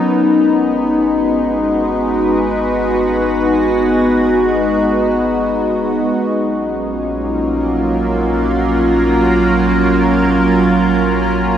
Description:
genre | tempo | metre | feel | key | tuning
ambient | free time | none | none | G# dorian | A4 = 440 Hz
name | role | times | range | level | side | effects
evolving wavetable pad | sustained chords | 0.0-11.6 s | F#3 to B4 | -12 LUFS | equal | chorus, built-in reverb
warm sub bass | bass | 0.0-11.6 s | G#1 to A#1 | -26 LUFS | equal | none
room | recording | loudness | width
wet cathedral reverb, RT60 5.6 s | none | -12 LUFS | side -9 dB against mid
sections
0.0-11.6 A section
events
fade-in on sub bass 0.0-11.6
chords
0.0 G#m7; 6.2 F#maj7/A#

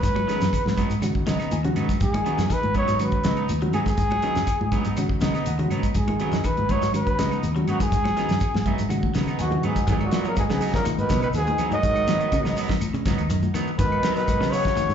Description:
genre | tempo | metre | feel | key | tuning
afrobeat | 122 BPM | 4/4 | straight | G# minor | A4 = 440 Hz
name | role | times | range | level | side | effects
breathy trumpet | melody | 0.0-14.9 s | F#4 to D#5 | -26 LUFS | equal | slapback echo
electric guitar at the edge of break-up | arpeggios | 0.0-14.9 s | C#3 to G#3 | -32 LUFS | left 8 dB | slapback echo
fingered electric bass | bass | 0.0-14.9 s | D#2 to C#3 | -26 LUFS | equal | none
damped 70s drum kit | drums | 0.0-14.9 s | hi-hat, kick drum, snare drum | -27 LUFS | equal | none
congas | percussion | 0.0-14.9 s | none | -32 LUFS | left 2 dB | none
shekere | percussion | 0.0-14.9 s | none | -37 LUFS | right 1 dB | none
claves | percussion | 0.2-14.9 s | none | -44 LUFS | left 1 dB | none
reed electric piano | accompaniment | 0.3-9.8 s | D#3 to G#5 | -31 LUFS | right 2 dB | overdrive, fast tremolo, slapback echo
electric guitar at the edge of break-up | stabs | 0.3-14.7 s | F#3 to D#4 | -30 LUFS | right 7 dB | spring reverb, slapback echo
growling bass trombone | second line | 9.4-14.9 s | F#2 to D#3 | -35 LUFS | left 3 dB | slapback echo
growling tenor saxophone | second line | 9.4-14.9 s | A#2 to F#3 | -34 LUFS | right 5 dB | slapback echo
room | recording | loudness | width
light reverb, studio reverb | live gig heard through the venue's PA, club reverb, nothing above 7.8 kHz | -20 LUFS | side -8 dB against mid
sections
0.0-9.9 A section; 9.9-14.9 B section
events
reed electric piano fill 1.0-2.0, 4.5-6.0, 8.4-9.9; drum fill 1.5-2.0, 8.9-9.9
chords
0.0 G#m7

